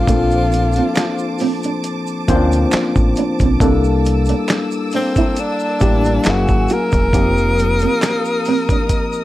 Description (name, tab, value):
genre	R&B, neo-soul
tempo	68 BPM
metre	4/4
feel	swing 54% on 16ths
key	Bb major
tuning	A4 = 440 Hz
part	breathy tenor saxophone	melody	0.0-9.2 s	C4 to Bb4	-19 LUFS	left 1 dB	none
part	barky tine electric piano	accompaniment	0.0-9.2 s	F3 to C5	-19 LUFS	left 3 dB	none
part	warm studio string section	sustained chords	0.0-9.2 s	Bb3 to E6	-28 LUFS	equal	none
part	deep dub fingered electric bass	bass	0.0-7.9 s	Fb1 to D2	-18 LUFS	equal	none
part	nylon-string guitar	second line	0.1-8.9 s	Bb3 to G4	-22 LUFS	right 6 dB	none
part	dusty soul sampler-style drum kit	drums	0.1-9.1 s	handclaps, hi-hat, kick drum, snare drum	-18 LUFS	equal	none
part	tube shaker and finger snaps	percussion	0.1-9.2 s	none	-34 LUFS	right 5 dB	none
room	light reverb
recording	none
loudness	-14 LUFS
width	side -15 dB against mid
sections	0.0-9.2 A section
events	none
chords	0.0 Bbmaj9; 3.6 C13; 6.2 Gb9; 7.1 F7sus4